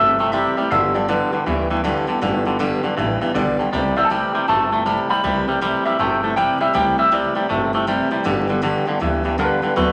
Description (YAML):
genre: rockabilly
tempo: 159 BPM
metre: 4/4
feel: swing 64% on 8ths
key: G major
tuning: A4 = 443 Hz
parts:
  - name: electric guitar through a small old amp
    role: melody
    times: 0.0-9.9 s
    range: B4 to B5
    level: -22 LUFS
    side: equal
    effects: vibrato effect
  - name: picked steel-string acoustic guitar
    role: accompaniment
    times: 0.0-9.9 s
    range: G2 to G4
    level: -27 LUFS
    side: equal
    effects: none
  - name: twangy electric guitar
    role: riff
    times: 0.0-9.9 s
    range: G2 to A3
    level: -23 LUFS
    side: equal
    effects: none
  - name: upright bass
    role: bass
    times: 0.0-9.9 s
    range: G1 to D2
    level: -30 LUFS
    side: equal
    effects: none
room: wet large studio reverb, RT60 1.2 s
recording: vinyl crackle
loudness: -19 LUFS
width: mono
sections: 0.0-9.9 A section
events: none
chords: 0.0 C6; 0.7 G6; 3.7 C6; 8.3 G6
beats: 0.33 | 0.71 1.09 1.46 1.84 | 2.22 2.59 2.97 3.35 | 3.73 4.10 4.48 4.86 | 5.24 5.61 5.99 6.37 | 6.75 7.12 7.50 7.88 | 8.26 8.63 9.01 9.39 | 9.77